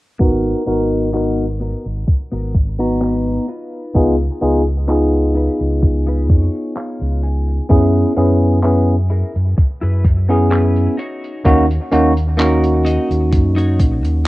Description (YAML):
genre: vaporwave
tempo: 64 BPM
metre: 4/4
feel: straight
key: G# minor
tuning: A4 = 439 Hz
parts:
  - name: bell-like tine electric piano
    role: accompaniment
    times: 0.2-14.3 s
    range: A#3 to A#5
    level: -16 LUFS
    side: equal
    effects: lush chorus, vintage 12-bit sampler grit, analog delay
  - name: clean electric guitar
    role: riff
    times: 0.2-14.3 s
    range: B3 to G#5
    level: -29 LUFS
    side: left 2 dB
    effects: analog chorus, low-pass filter, analog delay
  - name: overdriven fingered electric bass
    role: bass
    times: 0.2-14.3 s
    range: G#1 to F#2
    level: -17 LUFS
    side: equal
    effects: tube saturation
  - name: electronic kick drum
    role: drums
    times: 0.2-14.0 s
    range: none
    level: -14 LUFS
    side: equal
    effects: overdrive
  - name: open jazz drum kit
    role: drums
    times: 0.2-14.2 s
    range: handclaps, hi-hat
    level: -30 LUFS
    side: equal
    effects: none
room: light reverb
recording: rough home demo mix, cassette tape, low-pass filter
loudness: -13 LUFS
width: side -18 dB against mid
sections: 0.2-14.3 A section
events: filter sweep on clean electric guitar 0.2-14.3; filter sweep 0.2-14.3; clean electric guitar fill 5.8-7.7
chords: 0.2 G#m9; 3.5 C#9; 7.7 F#9sus4; 11.0 D#m7